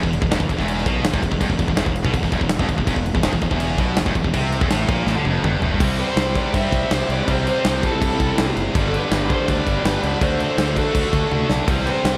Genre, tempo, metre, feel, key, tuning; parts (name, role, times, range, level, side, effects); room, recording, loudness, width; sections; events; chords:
heavy metal; 164 BPM; 4/4; straight; E minor; A4 = 440 Hz
heavy high-gain guitar; riff; 0.0-12.2 s; E2 to D4; -27 LUFS; equal; distortion, slapback echo
tight distorted guitar; riff; 0.0-12.2 s; E2 to D4; -29 LUFS; equal; distortion
fuzz fingered electric bass; bass; 0.0-12.2 s; E1 to G2; -27 LUFS; equal; overdrive
big rock drum kit; drums; 0.0-12.1 s; crash cymbal, kick drum, snare drum, toms; -24 LUFS; equal
high-gain lead guitar; melody; 6.0-12.2 s; A4 to E5; -27 LUFS; equal; distortion, tape echo
high-gain lead guitar; second line; 6.0-12.2 s; E4 to C5; -33 LUFS; equal
moderate lush hall reverb, RT60 1.6 s, small room ambience; big arena sound; -20 LUFS; mono
0.0-5.8 A section; 5.8-12.2 B section
drum fill 5.1-5.8, 11.3-11.7
0.0 Em; 5.8 C; 8.7 G; 10.2 D